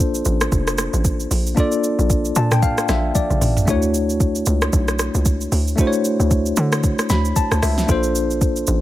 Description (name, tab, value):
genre	amapiano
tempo	114 BPM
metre	4/4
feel	swing 58% on 16ths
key	unclear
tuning	A4 = 440 Hz
part	bright tine electric piano	accompaniment	0.0-8.8 s	A3 to B5	-20 LUFS	left 2 dB	medium stereo tremolo
part	hollow log drum bass	bass	0.0-8.8 s	F1 to D3	-20 LUFS	equal	none
part	smooth R&B drum kit	drums	0.1-8.8 s	hi-hat, kick drum, rim click, shaker, snare drum, toms	-20 LUFS	equal	overdrive
room	little or no reverb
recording	none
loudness	-16 LUFS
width	side -14 dB against mid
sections	0.0-8.8 A section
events	tine electric piano fill 2.1-3.7, 6.8-7.9; drum fill 3.2-3.7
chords	0.0 Bbmaj9; 3.7 Dmaj9; 7.9 Bbmaj9